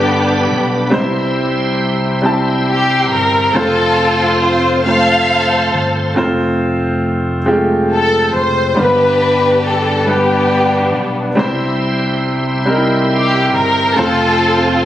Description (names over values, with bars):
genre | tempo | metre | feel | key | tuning
slow gospel | 46 BPM (dotted quarters) | 6/8 | straight | F major | A4 = 440 Hz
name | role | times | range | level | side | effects
warm studio string section | melody | 0.0-14.8 s | B3 to F5 | -13 LUFS | left 1 dB | none
clear baby grand piano | accompaniment | 0.0-14.8 s | G2 to A5 | -16 LUFS | equal | none
bright tonewheel organ | sustained chords | 0.0-6.1, 11.4-14.8 s | G4 to C6 | -23 LUFS | right 3 dB | slow rotary speaker, overdrive, chorus vibrato
fingered electric bass | bass | 0.0-14.8 s | F1 to C2 | -22 LUFS | equal | none
room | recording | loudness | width
light reverb, small room ambience | recorded on a phone in the room, studio reverb, compression | -12 LUFS | side -12 dB against mid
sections
0.0-6.2 A section; 6.2-14.8 A section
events
none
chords
0.0 G; 0.9 C; 3.6 F; 8.8 G; 11.4 C; 14.0 F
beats
| 0.94 2.25 | 3.56 4.86 | 6.17 7.47 | 8.77 10.08 | 11.38 12.68 | 13.97